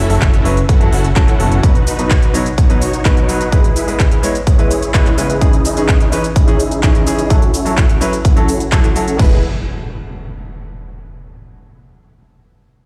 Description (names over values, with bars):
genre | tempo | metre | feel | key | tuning
EDM, festival progressive house | 127 BPM | 4/4 | straight | E major | A4 = 438 Hz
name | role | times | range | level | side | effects
supersaw chords | riff | 0.0-9.4 s | C#4 to F#5 | -23 LUFS | equal | sidechain pumping, low-pass filter, dub echo
fat analog bass | bass | 0.0-1.6, 9.2-9.4 s | E1 to F#2 | -18 LUFS | equal | sidechain pumping
clear concert grand piano | accompaniment | 0.1-9.4 s | B2 to C#5 | -22 LUFS | equal | sidechain pumping, dub echo
big-room dance drum kit | drums | 0.1-9.3 s | crash cymbal, handclaps, hi-hat, shaker | -26 LUFS | equal | none
electronic kick drum | drums | 0.2-9.3 s | none | -14 LUFS | equal | none
impact | sound effects | 9.2-11.1 s | none | -28 LUFS | equal | none
room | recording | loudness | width
light reverb, digital ambience | played on a big sound system in a bare room, large studio reverb | -13 LUFS | mono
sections
0.0-9.2 A section; 9.2-11.1 B section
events
filter sweep on supersaw synth 0.0-9.2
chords
0.0 F#m7; 1.6 B; 3.5 E; 5.4 C#madd9; 7.3 F#m7; 9.2 E